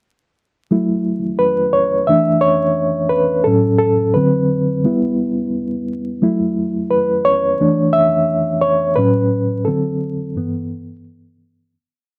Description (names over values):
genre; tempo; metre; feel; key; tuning
R&B; 87 BPM; 4/4; swing 55% on 16ths; unclear; A4 = 440 Hz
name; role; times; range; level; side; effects
reed electric piano; solo; 0.7-11.8 s; G2 to E5; -17 LUFS; equal; fast tremolo
room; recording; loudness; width
light reverb; vinyl crackle; -17 LUFS; mono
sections
0.7-11.7 verse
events
reed electric piano solo 0.7-11.7; fade-out 9.0-11.7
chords
0.7 F#m7; 2.1 E7sus4; 3.5 A6; 4.1 D6; 4.8 G6; 6.2 F#m7; 7.6 E7sus4; 9.0 A6; 9.7 D7; 10.4 G69